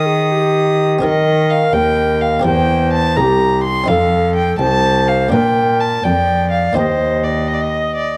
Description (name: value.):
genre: classical, baroque-style sonata movement with continuo.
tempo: 84 BPM (dotted quarters).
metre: 12/8.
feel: straight.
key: unclear.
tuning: A4 = 440 Hz.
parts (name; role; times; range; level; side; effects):
tenor recorder; melody; 0.0-8.2 s; G4 to Eb5; -20 LUFS; equal; none.
rich violin; second line; 0.0-8.2 s; C5 to Eb6; -20 LUFS; equal; none.
buff-stop harpsichord; accompaniment; 0.0-8.2 s; C2 to Bb4; -24 LUFS; equal; none.
warm cello; bass; 0.0-8.2 s; C2 to Eb3; -20 LUFS; equal; none.
room: moderate recital hall reverb, RT60 1.5 s.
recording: dark, warm production.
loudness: -15 LUFS.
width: mono.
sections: 0.0-8.2 A section.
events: none.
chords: 0.0 Eb; 2.5 C7/E; 3.9 F7; 5.3 Bb; 6.8 Eb.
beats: 0.33 | 1.04 1.75 2.46 3.17 | 3.89 4.60 5.33 6.05 | 6.77 7.49.